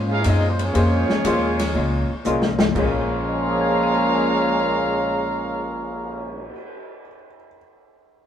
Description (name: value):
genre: jazz, big band swing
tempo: 120 BPM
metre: 4/4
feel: swing 69% on 8ths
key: Bb minor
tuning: A4 = 440 Hz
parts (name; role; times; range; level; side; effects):
- vintage hollow-body jazz guitar; accompaniment; 0.0-6.6 s; Bb2 to F4; -29 LUFS; left 1 dB; none
- warm concert grand piano; accompaniment; 0.0-7.6 s; Bb2 to Eb7; -28 LUFS; left 2 dB; none
- upright bass; bass; 0.0-6.5 s; Bb1 to Ab2; -24 LUFS; equal; none
- clear trumpet section; melody; 0.1-6.5 s; Bb3 to Bb5; -25 LUFS; equal; none
- clear trombone section; second line; 0.1-6.5 s; Bb2 to F4; -26 LUFS; right 2 dB; none
- open jazz drum kit; drums; 0.2-6.7 s; crash cymbal, cymbal swell, hi-hat, kick drum, ride cymbal, snare drum; -26 LUFS; left 2 dB; none
- warm trombone section; sustained chords; 2.2-6.5 s; Db3 to F4; -26 LUFS; left 1 dB; none
room: wet stone room reverb, RT60 1.3 s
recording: band playing live in one room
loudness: -18 LUFS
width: side -9 dB against mid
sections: 0.0-2.7 A section; 2.7-6.7 B section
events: drum fill 2.2-2.7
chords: 0.0 Bbm7